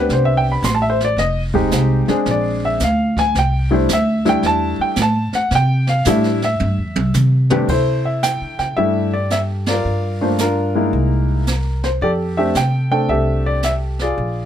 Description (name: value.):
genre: jazz piano trio.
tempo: 111 BPM.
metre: 4/4.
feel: swing 67% on 8ths.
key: C major.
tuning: A4 = 438 Hz.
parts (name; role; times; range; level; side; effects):
warm baby grand piano; melody; 0.0-14.5 s; C3 to C6; -18 LUFS; left 1 dB; none.
upright bass; bass; 0.0-14.5 s; F1 to D3; -19 LUFS; equal; none.
jazz brush drum kit; drums; 0.1-14.5 s; brushed snare drum, crash cymbal, hi-hat, kick drum, ride cymbal, snare drum, toms; -25 LUFS; right 3 dB; none.
room: little or no reverb.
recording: none.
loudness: -15 LUFS.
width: side -10 dB against mid.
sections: 0.0-7.7 A section; 7.7-14.5 B section.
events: grand piano solo 0.0-7.7; drum fill 6.6-7.7; band accent 9.6.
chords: 0.0 Am11; 1.2 Fm7; 2.3 Bb9; 3.4 C69; 9.8 Gm7; 10.9 C7alt; 12.0 F69.